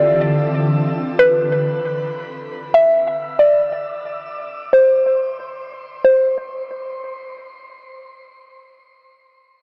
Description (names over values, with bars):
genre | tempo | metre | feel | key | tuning
hip hop | free time | none | none | unclear | A4 = 441 Hz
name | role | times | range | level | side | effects
mallet-like synth pluck | melody | 0.0-7.3 s | B4 to E5 | -18 LUFS | equal | chorus, low-pass filter, tape echo
ethereal airy pad | sustained chords | 0.0-0.7 s | D3 to A4 | -23 LUFS | equal | ensemble chorus, built-in reverb, phaser, low-pass filter
room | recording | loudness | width
moderate shimmer reverb, RT60 5.0 s | blown-out, overdriven recording, overdrive | -17 LUFS | mono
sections
0.0-6.0 A section; 6.0-9.6 B section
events
filter sweep 0.0-6.0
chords
0.0 Dm7; 0.8 N.C.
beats
free time